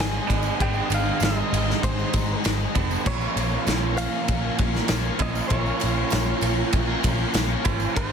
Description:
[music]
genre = rock, shoegaze and dream pop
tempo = 98 BPM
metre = 4/4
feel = straight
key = unclear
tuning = A4 = 440 Hz
[part]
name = direct-recorded clean electric guitar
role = melody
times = 0.0-8.1 s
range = C5 to Ab5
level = -32 LUFS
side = left 2 dB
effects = spring reverb, analog delay
[part]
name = analog string pad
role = sustained chords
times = 0.0-8.1 s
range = Ab4 to Db6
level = -34 LUFS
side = right 1 dB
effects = ensemble chorus
[part]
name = biting overdriven guitar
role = riff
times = 0.0-8.1 s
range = Ab2 to F4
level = -30 LUFS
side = left 11 dB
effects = lush chorus
[part]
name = twangy electric guitar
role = riff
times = 0.0-8.1 s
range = Ab2 to F4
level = -28 LUFS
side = right 12 dB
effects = reverse reverb
[part]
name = vintage muted picked electric bass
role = bass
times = 0.0-8.1 s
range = F1 to Bb1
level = -27 LUFS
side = equal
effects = none
[part]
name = loose indie drum kit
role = drums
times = 0.0-8.1 s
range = crash cymbal, kick drum, ride cymbal, snare drum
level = -26 LUFS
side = equal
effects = none
[part]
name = tambourine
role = percussion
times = 0.1-7.9 s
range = none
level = -42 LUFS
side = right 15 dB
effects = none
[sound]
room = light reverb, small room ambience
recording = dense, heavily limited modern master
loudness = -21 LUFS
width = side -7 dB against mid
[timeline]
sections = 0.0-8.1 A section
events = none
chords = 0.0 Ab; 3.0 Bbm7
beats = | 0.60 1.21 1.82 2.43 | 3.05 3.66 4.27 4.89 | 5.50 6.12 6.73 7.35 | 7.96

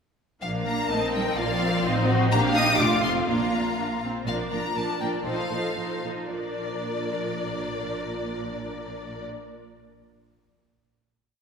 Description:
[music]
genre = quick classical-period movement for string orchestra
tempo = 106-129 BPM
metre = 2/4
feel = rubato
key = Bb major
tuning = A4 = 441 Hz
[part]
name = clear symphonic violin section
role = melody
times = 0.4-9.2 s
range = D5 to Eb6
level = -30 LUFS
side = left 4 dB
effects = none
[part]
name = warm symphonic violin section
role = second line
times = 0.4-9.2 s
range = F4 to F5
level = -29 LUFS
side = left 1 dB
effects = none
[part]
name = rich symphonic viola section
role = accompaniment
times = 0.4-9.2 s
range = F3 to F4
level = -30 LUFS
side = right 1 dB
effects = none
[part]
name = warm symphonic cello section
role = bass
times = 0.4-9.2 s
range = Bb2 to Eb4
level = -32 LUFS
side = right 2 dB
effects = none
[part]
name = warm symphonic double bass section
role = bass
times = 0.4-9.2 s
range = F1 to Bb1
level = -32 LUFS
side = right 1 dB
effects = none
[sound]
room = wet concert hall reverb, RT60 2.0 s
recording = recorded in a church or concert hall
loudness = -23 LUFS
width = side -6 dB against mid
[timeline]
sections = 0.4-4.3 A section; 4.3-6.3 coda; 6.3-8.5 final chord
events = slowing down 3.8-6.3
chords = 0.4 Bb; 0.9 Eb/Bb; 1.4 Bb; 1.9 Adim7; 2.3 Bb; 2.8 F; 3.3 Bb; 5.3 F7/Bb; 6.3 Bb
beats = | 0.43 0.91 | 1.38 1.85 | 2.32 2.80 | 3.29 3.78 | 4.27 4.76 | 5.25 5.77 | 6.32 6.86 | 7.39 7.93

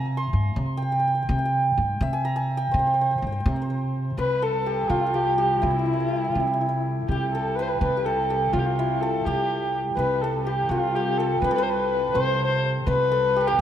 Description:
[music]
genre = persian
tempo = 83 BPM (dotted quarters)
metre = 6/8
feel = straight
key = C dastgah homayun, C dastgah mahur from 4.2 s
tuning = A4 = 445 Hz
[part]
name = santur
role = melody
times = 0.0-13.6 s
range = E4 to C6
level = -25 LUFS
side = right 1 dB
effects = tape echo
[part]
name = upright bass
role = bass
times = 0.0-13.6 s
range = G2 to C3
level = -27 LUFS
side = equal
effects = none
[part]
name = dark kamancheh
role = second line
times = 4.2-13.6 s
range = E4 to C5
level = -26 LUFS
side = left 3 dB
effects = none
[part]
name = warm chamber cello section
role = drone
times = 4.2-13.6 s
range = C2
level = -33 LUFS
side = right 1 dB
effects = none
[sound]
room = moderate recital hall reverb, RT60 1.6 s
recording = none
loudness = -21 LUFS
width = side -10 dB against mid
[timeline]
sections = 0.0-4.2 A section; 4.2-13.6 B section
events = none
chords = none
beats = 0.56 | 1.28 2.01 | 2.73 3.46 | 4.18 4.91 | 5.63 6.36 | 7.08 7.80 | 8.53 9.25 | 9.98 10.70 | 11.43 12.15 | 12.87 13.60

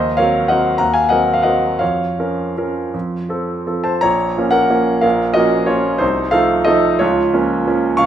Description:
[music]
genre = classical, piano waltz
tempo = 155-204 BPM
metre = 3/4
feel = rubato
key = Bb minor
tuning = A4 = 440 Hz
[part]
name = clear concert grand piano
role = solo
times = 0.0-8.1 s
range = Bb1 to Db6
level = -14 LUFS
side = equal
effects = none
[sound]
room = wet recital hall reverb, RT60 1.5 s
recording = minimal, uncompressed stereo recording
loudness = -14 LUFS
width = side -10 dB against mid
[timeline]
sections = 0.0-4.0 A section; 4.0-8.1 B section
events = none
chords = 0.0 Cm7b5/Eb; 1.8 Bbm/F; 2.9 F; 4.0 Bbm; 6.0 F7/C; 7.0 Bbm/Db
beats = 0.20 0.51 | 0.81 1.11 1.45 | 1.81 2.19 2.57 | 2.94 3.30 3.68 | 4.05 4.39 4.72 | 5.04 5.37 5.70 | 6.02 6.35 6.69 | 7.02 7.34 7.67 | 8.00

